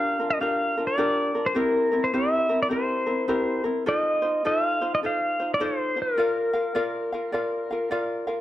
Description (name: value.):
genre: Hawaiian.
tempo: 104 BPM.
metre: 4/4.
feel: swing 64% on 8ths.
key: Bb major.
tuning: A4 = 435 Hz.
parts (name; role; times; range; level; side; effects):
pedal steel guitar; melody; 0.0-7.9 s; Bb4 to F5; -24 LUFS; equal; none.
ukulele; accompaniment; 0.0-8.4 s; C4 to F5; -26 LUFS; left 1 dB; none.
room: moderate echo chamber reverb, RT60 1.6 s, studio reverb.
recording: dark, warm production.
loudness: -22 LUFS.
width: side -13 dB against mid.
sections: 0.0-8.4 A section.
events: none.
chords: 0.0 Gm7; 1.6 C7; 3.9 F7; 6.2 Bb.